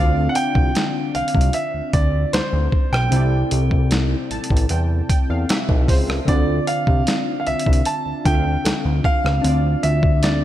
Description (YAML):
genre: contemporary R&B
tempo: 76 BPM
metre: 4/4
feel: straight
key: D minor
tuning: A4 = 440 Hz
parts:
  - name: warm concert grand piano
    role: melody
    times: 0.0-10.4 s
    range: C5 to A5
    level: -24 LUFS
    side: right 2 dB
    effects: analog delay
  - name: warm analog keys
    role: accompaniment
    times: 0.0-10.4 s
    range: C3 to A5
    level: -24 LUFS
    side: left 2 dB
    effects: chorus
  - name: fat analog bass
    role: bass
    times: 0.0-10.4 s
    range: A1 to E2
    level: -20 LUFS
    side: equal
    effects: none
  - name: dusty soul sampler-style drum kit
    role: drums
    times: 0.4-10.4 s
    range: hi-hat, kick drum, rim click, snare drum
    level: -20 LUFS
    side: equal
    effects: none
  - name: soft round pluck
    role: texture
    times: 5.5-9.8 s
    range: G4 to A4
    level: -36 LUFS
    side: right 1 dB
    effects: none
room: light reverb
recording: none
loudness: -16 LUFS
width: side -12 dB against mid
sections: 0.0-10.4 A section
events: synth keys fill 3.9-6.3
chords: 0.0 Dm7; 3.1 C6; 6.3 Dm9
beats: 0.75 1.54 2.33 | 3.12 3.91 4.70 5.49 | 6.28 7.07 7.86 8.65 | 9.44 10.23